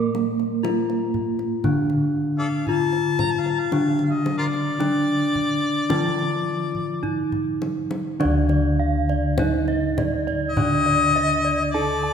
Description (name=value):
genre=Javanese gamelan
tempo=51-62 BPM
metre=4/4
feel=straight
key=D pelog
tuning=A4 = 441 Hz
part: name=gamelan-type bronze metallophone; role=melody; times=0.0-12.1 s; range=D4 to Bb4-20c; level=-24 LUFS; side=left 1 dB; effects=none
part: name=gamelan-type bronze metallophone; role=accompaniment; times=0.0-12.1 s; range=D3 to Bb3-20c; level=-27 LUFS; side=right 3 dB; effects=none
part: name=gamelan-type bossed gongs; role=bass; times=0.0-12.1 s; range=D2 to Bb4-20c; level=-27 LUFS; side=left 1 dB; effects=none
part: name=kendang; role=percussion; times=0.1-11.9 s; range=none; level=-31 LUFS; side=left 2 dB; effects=none
part: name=warm harmonica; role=second line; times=2.4-12.1 s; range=F4 to Bb5-23c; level=-24 LUFS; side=left 4 dB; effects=none
part: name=gamelan-type bronze metallophone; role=arpeggios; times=8.2-12.1 s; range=D5 to A5-30c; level=-27 LUFS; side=right 3 dB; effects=none
room=wet concert hall reverb, RT60 2.5 s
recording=minimal, uncompressed stereo recording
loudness=-20 LUFS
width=side -7 dB against mid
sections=0.0-8.2 A section; 8.2-12.1 B section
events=drum fill 6.8-8.2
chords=none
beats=0.65 1.65 2.67 | 3.73 4.80 5.91 7.04 | 8.21 9.38 10.56 11.74